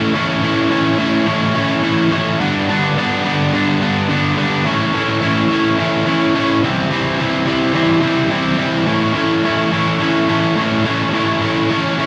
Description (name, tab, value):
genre	rock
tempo	106 BPM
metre	4/4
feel	straight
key	A mixolydian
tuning	A4 = 440 Hz
part	crunchy overdriven guitar	solo	0.0-12.1 s	G2 to E4	-16 LUFS	equal	none
room	wet large studio reverb, RT60 1.2 s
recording	band playing live in one room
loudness	-16 LUFS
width	mono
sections	0.0-12.1 A section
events	none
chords	0.0 A; 2.4 G; 4.7 A; 6.6 C; 8.9 A